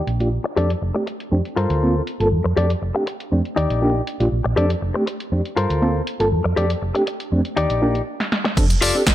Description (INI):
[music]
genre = filtered disco house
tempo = 120 BPM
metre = 4/4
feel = straight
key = F mixolydian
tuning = A4 = 440 Hz
[part]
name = hollow-body short-scale fingered electric bass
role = bass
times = 0.1-8.9 s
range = F1 to G2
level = -21 LUFS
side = right 1 dB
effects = sidechain pumping, low-pass filter
[part]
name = punchy analog drum machine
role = drums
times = 0.1-9.1 s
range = crash cymbal, hi-hat, snare drum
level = -24 LUFS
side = right 1 dB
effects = sidechain pumping on hats, low-pass filter on hats, low-pass filter on snare, sidechain pumping on cymbals, low-pass filter on cymbals
[part]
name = reed electric piano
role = accompaniment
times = 0.2-9.0 s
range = A3 to A4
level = -23 LUFS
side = right 1 dB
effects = fast tremolo, phaser, sidechain pumping, low-pass filter
[part]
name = direct-recorded clean electric guitar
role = riff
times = 0.4-9.1 s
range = Eb4 to D5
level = -24 LUFS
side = left 4 dB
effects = vintage 12-bit sampler grit, sidechain pumping, low-pass filter
[part]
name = electronic kick drum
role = drums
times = 8.6-9.1 s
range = none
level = -18 LUFS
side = right 1 dB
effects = none
[sound]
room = light reverb, digital ambience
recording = none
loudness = -18 LUFS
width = side -13 dB against mid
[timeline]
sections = 0.0-8.6 A section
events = filter sweep 0.0-8.6; break 8.1-8.6; drum fill 8.2-8.6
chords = 0.0 Ebmaj7 (rootless); 0.6 F69; 1.6 Gm11; 2.6 F69; 3.6 Ebmaj7; 4.6 F69; 5.6 Gm11; 6.6 F69; 7.6 Ebmaj7; 8.6 F69